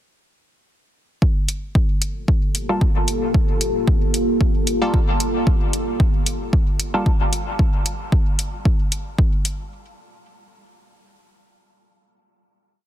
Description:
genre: dub techno.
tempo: 113 BPM.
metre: 4/4.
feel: swing 55% on 16ths.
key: G minor.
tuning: A4 = 443 Hz.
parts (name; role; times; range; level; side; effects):
deep dark ambient pad; sustained chords; 2.6-7.6 s; Bb3 to A4; -24 LUFS; equal; chorus, built-in reverb, sidechain pumping.
electronic kick drum; drums; 1.2-9.3 s; none; -18 LUFS; equal; overdrive.
electronic hi-hat; drums; 1.5-9.6 s; none; -22 LUFS; left 1 dB; overdrive.
filtered dub chord stab; stabs; 2.7-7.1 s; G3 to A4; -27 LUFS; equal; chorus, phaser, sidechain pumping, dub echo.
room: digital ambience.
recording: dense, heavily limited modern master.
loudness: -17 LUFS.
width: side -12 dB against mid.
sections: 1.2-9.7 groove.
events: none.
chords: 1.2 Gm9.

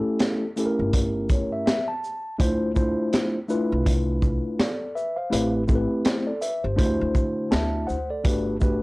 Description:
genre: hip hop, jazz-hop.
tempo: 82 BPM.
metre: 4/4.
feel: swing 60% on 16ths.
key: A minor.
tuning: A4 = 441 Hz.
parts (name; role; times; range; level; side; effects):
mellow tine electric piano; accompaniment; 0.0-8.8 s; A3 to A5; -24 LUFS; equal; slow stereo tremolo.
crunchy breakbeat drum kit; drums; 0.2-8.8 s; hi-hat, kick drum, shaker, snare drum; -23 LUFS; equal; none.
upright bass; bass; 0.8-8.8 s; G1 to D3; -29 LUFS; equal; none.
room: light reverb.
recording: dry, gritty hardware recording, transformer saturation, cassette tape.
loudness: -22 LUFS.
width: side -23 dB against mid.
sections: 0.0-8.8 A section.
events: tine electric piano fill 0.9-2.4.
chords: 0.0 A7b9; 2.4 Dm9; 5.3 Am7; 6.8 D9; 8.3 Gmaj7.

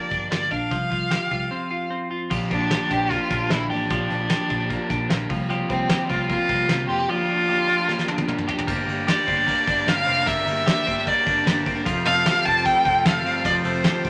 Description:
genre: jangly indie pop.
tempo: 151 BPM.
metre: 4/4.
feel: straight.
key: unclear.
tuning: A4 = 440 Hz.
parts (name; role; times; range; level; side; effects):
rich violin; melody; 0.0-14.1 s; C4 to A5; -25 LUFS; equal; none.
twelve-string electric guitar; arpeggios; 0.0-14.1 s; F3 to G4; -30 LUFS; equal; none.
vintage muted picked electric bass; bass; 0.1-14.1 s; F1 to C2; -34 LUFS; equal; none.
soft brush drum kit; drums; 0.1-14.1 s; crash cymbal, hi-hat, kick drum, ride cymbal, snare drum, toms; -28 LUFS; equal; none.
raw garage guitar; accompaniment; 2.3-14.1 s; G2 to A4; -33 LUFS; equal; overdrive.
combo organ; accompaniment; 8.7-14.1 s; D4 to D5; -31 LUFS; equal; none.
room: wet studio ambience, RT60 0.5 s.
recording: none.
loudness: -22 LUFS.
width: mono.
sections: 0.0-2.3 A section; 2.3-8.7 B section; 8.7-14.1 C section.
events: break 1.5-2.3; drum fill 7.9-8.7.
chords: 0.0 Gm7; 0.7 Csus4; 2.3 Bb6; 5.3 C7sus4; 7.1 Gm7; 8.7 Gm; 11.9 Fadd9.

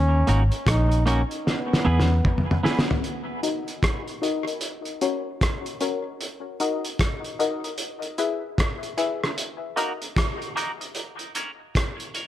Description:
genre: dub reggae.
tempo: 76 BPM.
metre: 4/4.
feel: swing 62% on 16ths.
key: Eb phrygian.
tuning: A4 = 440 Hz.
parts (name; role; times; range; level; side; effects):
bright trombone; melody; 0.0-2.6 s; B3 to Eb4; -28 LUFS; equal; tape echo.
vintage muted fingered electric bass; bass; 0.0-2.2 s; Ab1 to E2; -19 LUFS; equal; none.
clean electric guitar; accompaniment; 0.3-2.9, 9.8-12.3 s; Bb3 to B4; -30 LUFS; right 3 dB; high-pass filter, low-pass filter, tape echo.
cloth-damped thuddy drum kit; drums; 0.3-12.3 s; hi-hat, kick drum, rim click, snare drum, toms; -25 LUFS; equal; none.
filtered dub chord stab; stabs; 3.4-12.3 s; Db4 to E5; -28 LUFS; left 5 dB; chorus, high-pass filter, low-pass filter, tape echo.
room: light reverb, small room ambience.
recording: echo-heavy mix.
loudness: -22 LUFS.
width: side -12 dB against mid.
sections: 0.0-3.0 A section; 3.0-12.3 B section.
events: break 0.0-3.0, 3.0-9.4; drum fill 1.5-3.0; filter sweep 3.0-12.3.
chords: 0.0 Ebm; 1.5 E; 3.0 Ebm; 4.6 Gb; 6.2 Ebm; 7.8 E; 9.4 Ebm; 11.0 Gb.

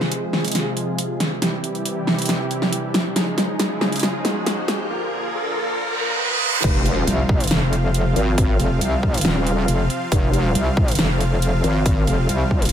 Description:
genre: heavy wobble dubstep.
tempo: 138 BPM.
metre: 4/4.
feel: half-time.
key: F minor.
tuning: A4 = 438 Hz.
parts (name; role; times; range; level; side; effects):
supersaw chords; sustained chords; 0.0-12.7 s; C3 to F5; -25 LUFS; right 1 dB; sidechain pumping, low-pass filter.
dubstep drum kit; drums; 0.0-12.7 s; crash cymbal, hi-hat, snare drum; -22 LUFS; equal; overdrive.
riser, reverse cymbal and impact; sound effects; 0.0-8.4 s; none; -26 LUFS; right 1 dB; none.
wobble bass; bass; 6.6-12.1 s; Eb1 to Ab1; -19 LUFS; equal; chorus, overdrive.
electronic kick drum; drums; 6.6-12.6 s; none; -20 LUFS; equal; none.
metallic wobble bass; bass; 7.1-12.7 s; F1 to C2; -19 LUFS; equal; chorus, overdrive.
room: little or no reverb.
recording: high-pass filter.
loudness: -18 LUFS.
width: side -9 dB against mid.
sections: 0.0-6.6 A section; 6.6-12.7 B section.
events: build-up 0.0-6.6; drum fill 0.0-4.9; riser 0.0-6.6; filter sweep on supersaw synth 0.0-6.6; filter sweep 0.0-6.6; reverse cymbal 5.8-6.6; drop 6.6-12.7; impact 6.6-8.4.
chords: 0.0 Fm; 1.4 C; 3.2 Dbadd9; 4.9 Bb; 6.6 F5.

